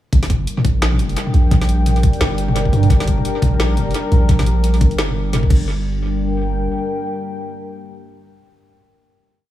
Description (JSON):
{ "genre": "half-time drum and bass", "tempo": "173 BPM", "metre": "4/4", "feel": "swing 58% on 16ths, half-time", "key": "G minor", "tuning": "A4 = 439 Hz", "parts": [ { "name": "dark analog pad", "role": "sustained chords", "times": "0.1-9.1 s", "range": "G3 to G5", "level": "-23 LUFS", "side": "left 3 dB", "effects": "chorus, sidechain pumping" }, { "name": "long sustained 808-style bass", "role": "bass", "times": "0.1-6.7 s", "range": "G1 to G2", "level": "-17 LUFS", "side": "equal", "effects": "none" }, { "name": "drum and bass drum kit", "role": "drums", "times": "0.1-5.6 s", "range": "crash cymbal, hi-hat, snare drum, toms", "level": "-22 LUFS", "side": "right 1 dB", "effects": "overdrive, studio reverb, tape echo" }, { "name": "electronic kick drum", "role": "drums", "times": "0.1-5.6 s", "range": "none", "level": "-16 LUFS", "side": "equal", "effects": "overdrive, studio reverb" } ], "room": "digital ambience", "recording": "echo-heavy mix, small room ambience", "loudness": "-14 LUFS", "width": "side -13 dB against mid", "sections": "0.1-5.7 drop; 5.7-8.4 final chord", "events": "drop 0.1-5.7", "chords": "0.1 Gm; 5.5 G5; 5.7 Gm" }